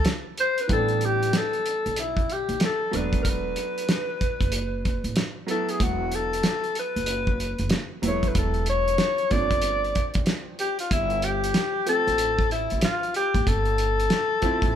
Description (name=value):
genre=hip hop, jazz-hop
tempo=94 BPM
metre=4/4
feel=swing 63% on 16ths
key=unclear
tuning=A4 = 440 Hz
part: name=breathy alto saxophone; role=melody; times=0.0-14.8 s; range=E4 to D5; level=-25 LUFS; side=left 2 dB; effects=none
part: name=clear upright piano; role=accompaniment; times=0.0-14.8 s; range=E3 to G4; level=-34 LUFS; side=right 4 dB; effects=none
part: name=upright bass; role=bass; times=0.0-14.7 s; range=E1 to B1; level=-28 LUFS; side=right 1 dB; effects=none
part: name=cloth-damped thuddy drum kit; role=drums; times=0.0-14.7 s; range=hi-hat, kick drum, snare drum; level=-26 LUFS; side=equal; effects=none
room=light reverb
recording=band playing live in one room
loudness=-22 LUFS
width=side -9 dB against mid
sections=0.0-14.8 A section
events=none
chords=0.0 A9sus4; 2.9 E9sus4; 9.3 G9sus4